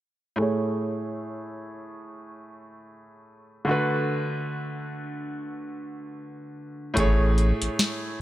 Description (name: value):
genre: contemporary R&B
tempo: 73 BPM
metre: 4/4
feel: swing 58% on 16ths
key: A major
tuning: A4 = 440 Hz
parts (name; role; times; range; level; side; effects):
- bright grand piano; accompaniment; 0.4-8.2 s; A2 to C#5; -28 LUFS; right 1 dB; low-pass filter
- saturated sub bass; bass; 7.0-7.7 s; A1; -22 LUFS; equal; none
- booming analog drum machine; drums; 7.0-8.0 s; hi-hat, kick drum, snare drum; -24 LUFS; left 1 dB; vintage 12-bit sampler grit
room: light reverb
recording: none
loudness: -24 LUFS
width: side -14 dB against mid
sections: 0.4-7.0 A section; 7.0-8.2 B section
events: filter sweep on grand piano 0.4-7.0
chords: 0.4 Amaj7; 3.7 D6; 7.0 Amaj7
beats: | 0.39 1.21 2.03 2.86 | 3.68 4.50 5.32 6.14 | 6.96 7.79